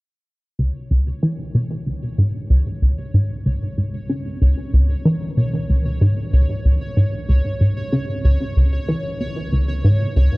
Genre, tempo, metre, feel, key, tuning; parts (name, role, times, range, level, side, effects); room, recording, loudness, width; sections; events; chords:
ambient, sequencer-driven space music; 94 BPM; 4/4; straight; C# minor; A4 = 440 Hz
plucky analog bass; riff; 0.6-10.3 s; C#2 to E3; -17 LUFS; equal; lush chorus, tape echo
pulsing gated texture; texture; 0.6-10.4 s; C#5; -34 LUFS; right 1 dB; chorus, built-in reverb
moderate huge ambient reverb, RT60 8.5 s; worn, warbling old tape, cassette tape, warbly pitch drift; -17 LUFS; side -24 dB against mid
0.6-10.4 A section
fade-in on synth texture 0.6-10.4; filter sweep on analog synth bass 0.6-10.4
0.6 C#5